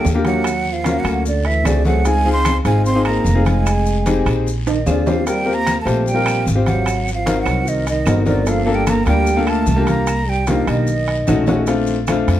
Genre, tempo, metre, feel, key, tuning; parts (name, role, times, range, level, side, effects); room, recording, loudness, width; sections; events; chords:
Afro-Cuban jazz; 150 BPM; 4/4; straight; Bb major; A4 = 439 Hz
breathy mellow silver concert flute; melody; 0.0-11.5 s; D5 to C6; -22 LUFS; right 2 dB
breathy trombone; second line; 0.0-11.5 s; D3 to C4; -24 LUFS; right 3 dB
clear baby grand piano; accompaniment; 0.0-12.4 s; A3 to C5; -20 LUFS; left 3 dB
congas; percussion; 0.0-12.4 s; -25 LUFS; left 1 dB
guiro; percussion; 0.0-12.4 s; -37 LUFS; left 5 dB
timbales; percussion; 0.0-12.4 s; -27 LUFS; right 6 dB
upright bass; bass; 0.1-12.4 s; F1 to F2; -19 LUFS; equal
maracas; percussion; 0.1-12.4 s; -35 LUFS; left 6 dB
claves; percussion; 0.4-12.3 s; -37 LUFS; right 7 dB
light reverb; dark, warm production; -15 LUFS; side -12 dB against mid
0.0-11.7 A section
drum fill 4.7-5.3, 11.3-11.7
0.5 Ebm7; 1.3 D7#11; 2.1 Dbmaj7; 3.7 Fm7; 4.5 Bb7; 5.3 Eb6; 6.9 Ab9; 8.5 Gm7; 10.1 Cm7; 10.9 B9; 11.7 Bbmaj7